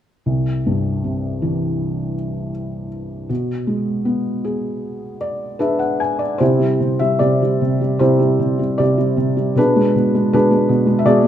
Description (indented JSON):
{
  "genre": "classical, lyrical solo piano",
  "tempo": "77 BPM",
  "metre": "4/4",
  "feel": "uneven beats, rubato",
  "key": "unclear",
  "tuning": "A4 = 440 Hz",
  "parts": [
    { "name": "felt-muted upright piano", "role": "solo", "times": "0.3-11.3 s", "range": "C2 to G#5", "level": "-16 LUFS", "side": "equal", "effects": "none" }
  ],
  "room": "moderate recital hall reverb, RT60 1.4 s",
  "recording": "none",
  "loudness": "-16 LUFS",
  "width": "side -10 dB against mid",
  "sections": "0.3-6.4 A section; 6.4-11.3 B section",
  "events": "felt piano fill 4.8-6.4",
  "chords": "0.3 C; 3.3 Bm6; 6.4 Cadd9; 9.6 Bm6"
}